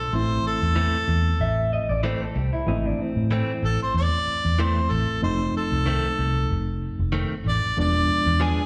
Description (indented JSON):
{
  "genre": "blues",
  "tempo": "94 BPM",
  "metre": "4/4",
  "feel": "swing 55% on 16ths",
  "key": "A harmonic minor",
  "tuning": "A4 = 440 Hz",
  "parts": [
    { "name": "warm harmonica", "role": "melody", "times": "0.0-8.7 s", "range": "G#4 to D5", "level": "-28 LUFS", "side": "equal", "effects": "overdrive, slapback echo" },
    { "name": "bright reed electric piano", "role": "accompaniment", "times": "0.0-8.7 s", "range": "E3 to E4", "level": "-32 LUFS", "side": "equal", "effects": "fast tremolo" },
    { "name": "vintage muted fingered electric bass", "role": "bass", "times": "0.1-8.5 s", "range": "E1 to A2", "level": "-26 LUFS", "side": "equal", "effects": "none" },
    { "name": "direct-recorded clean electric guitar", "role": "stabs", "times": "0.8-8.6 s", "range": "Eb3 to G#4", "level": "-33 LUFS", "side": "equal", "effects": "slapback echo, tape echo" },
    { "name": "electric guitar through a small old amp", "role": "second line", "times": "1.4-3.6 s", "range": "C4 to E5", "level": "-31 LUFS", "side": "equal", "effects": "spring reverb" }
  ],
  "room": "light reverb",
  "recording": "live gig heard through the venue's PA, recital hall reverb",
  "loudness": "-23 LUFS",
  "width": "mono",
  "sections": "0.0-8.7 A section",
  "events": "none",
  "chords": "0.1 Am; 5.2 F7; 7.8 E7b9",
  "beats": "| 0.12 0.76 1.39 2.03 | 2.67 3.31 3.94 4.58 | 5.22 5.85 6.49 7.13 | 7.77 8.40"
}